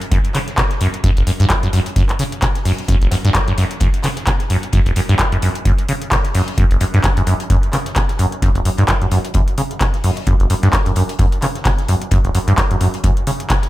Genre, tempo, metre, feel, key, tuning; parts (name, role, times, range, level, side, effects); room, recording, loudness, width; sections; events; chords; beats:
acid house; 130 BPM; 4/4; swing 57% on 16ths; A4 = 440 Hz
booming analog drum machine; drums; 0.0-13.7 s; handclaps, hi-hat; -22 LUFS; left 1 dB
open jazz drum kit; drums; 0.0-13.7 s; hi-hat, snare drum; -34 LUFS; left 3 dB
deep acid bass; riff; 0.1-13.5 s; F#1 to C#3; -17 LUFS; equal; lush chorus, sidechain pumping, tape echo
electronic kick drum; drums; 0.1-13.6 s; -17 LUFS; equal
light reverb, small room ambience; -14 LUFS; side -16 dB against mid
0.0-13.7 A section
| 0.12 0.58 1.04 1.50 | 1.96 2.42 2.88 3.35 | 3.81 4.27 4.73 5.19 | 5.65 6.12 6.58 7.04 | 7.50 7.96 8.42 8.88 | 9.35 9.81 10.27 10.73 | 11.19 11.65 12.12 12.58 | 13.04 13.50